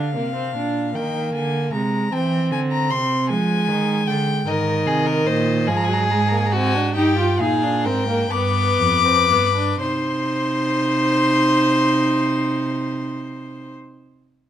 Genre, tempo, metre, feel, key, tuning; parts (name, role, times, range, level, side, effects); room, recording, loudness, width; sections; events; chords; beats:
classical, baroque-style fugue for string quartet; 38-52 BPM (dotted quarters); 6/8; straight; C minor from 4.5 s; A4 = 440 Hz
warm violin; melody; 0.0-13.7 s; Eb5 to D6; -23 LUFS; left 5 dB
warm viola; accompaniment; 0.0-13.7 s; Eb3 to F4; -22 LUFS; right 2 dB
rich cello; bass; 0.0-13.7 s; F2 to F3; -24 LUFS; right 3 dB
warm violin; second line; 4.5-13.7 s; Gb4 to C5; -24 LUFS; left 2 dB
moderate stone room reverb, RT60 1.0 s; -17 LUFS; side -10 dB against mid
0.0-9.8 A section; 9.8-12.9 B section
slowing down 3.3-9.8
0.0 Bb; 1.0 Eb; 2.1 C; 3.3 Fm; 4.5 Ab; 5.7 Ab7; 7.0 Cm/G; 8.3 G7; 9.8 Cm
0.95 | 2.13 3.30 | 4.47 5.68 | 6.96 8.32 | 9.81 11.38